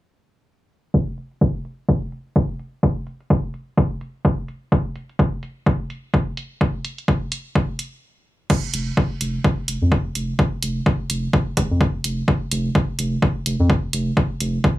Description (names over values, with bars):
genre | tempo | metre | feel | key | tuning
minimal techno | 127 BPM | 4/4 | swing 59% on 16ths | unclear | A4 = 441 Hz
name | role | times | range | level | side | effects
electronic kick drum | drums | 0.9-14.8 s | none | -18 LUFS | equal | overdrive
punchy analog drum machine | drums | 1.2-14.5 s | crash cymbal, hi-hat | -27 LUFS | right 3 dB | overdrive
round analog bass | bass | 8.7-14.6 s | F1 to F2 | -21 LUFS | equal | sidechain pumping
room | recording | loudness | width
little or no reverb | low-pass filter | -19 LUFS | side -16 dB against mid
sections
0.9-8.5 A section; 8.5-14.8 B section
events
filter sweep 0.9-8.5; stop 8.0-8.5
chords
none